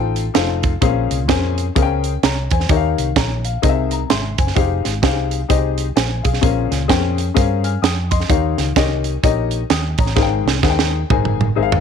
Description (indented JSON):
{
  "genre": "uptempo gospel",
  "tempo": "128 BPM",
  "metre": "4/4",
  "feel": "swing 61% on 8ths",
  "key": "unclear",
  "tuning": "A4 = 440 Hz",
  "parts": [
    { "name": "warm baby grand piano", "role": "accompaniment", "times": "0.0-11.8 s", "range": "Ab2 to F6", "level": "-20 LUFS", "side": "left 14 dB", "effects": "none" },
    { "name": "hollow-body short-scale fingered electric bass", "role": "bass", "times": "0.0-11.8 s", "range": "F1 to G2", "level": "-21 LUFS", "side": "right 1 dB", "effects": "none" },
    { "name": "tight funk drum kit", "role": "drums", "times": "0.2-11.8 s", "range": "hi-hat, kick drum, snare drum, toms", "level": "-18 LUFS", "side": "right 4 dB", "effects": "none" }
  ],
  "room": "studio reverb",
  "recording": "1960s-style stereo",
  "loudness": "-15 LUFS",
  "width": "side -7 dB against mid",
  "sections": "0.0-11.8 A section",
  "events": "drum fill 10.2-11.8",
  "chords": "0.0 F7; 0.8 Bbm9; 2.7 Eb9; 3.6 C7alt; 4.6 Fm9; 6.4 Bbm9; 8.3 Eb9; 10.2 Abmaj9",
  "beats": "0.35 | 0.82 1.29 1.76 2.23 | 2.69 3.16 3.63 4.10 | 4.56 5.03 5.50 5.96 | 6.43 6.90 7.37 7.83 | 8.30 8.77 9.23 9.70 | 10.16 10.63 11.10 11.56"
}